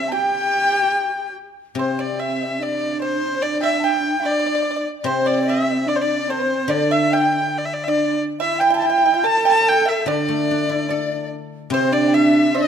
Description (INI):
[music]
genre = chinese traditional, Chinese chamber ensemble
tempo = 72 BPM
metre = 2/4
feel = straight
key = unclear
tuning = A4 = 445 Hz
[part]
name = clear erhu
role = melody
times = 0.0-12.7 s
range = C5 to A5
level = -22 LUFS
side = left 1 dB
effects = none
[part]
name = mellow large dizi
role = second line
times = 0.0-12.7 s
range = C5 to A5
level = -25 LUFS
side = left 6 dB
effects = none
[part]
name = pipa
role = second line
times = 0.0-12.7 s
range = C5 to A5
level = -23 LUFS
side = right 6 dB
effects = none
[part]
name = warm horsehead fiddle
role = second line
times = 0.0-12.7 s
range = C4 to A4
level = -22 LUFS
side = right 3 dB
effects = none
[part]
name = guzheng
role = accompaniment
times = 0.0-12.7 s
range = C3 to A4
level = -27 LUFS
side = left 4 dB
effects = none
[sound]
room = moderate scoring stage reverb, RT60 1.7 s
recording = close, detailed microphones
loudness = -17 LUFS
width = side -8 dB against mid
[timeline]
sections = 0.0-1.8 A section; 1.8-12.7 B section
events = none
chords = none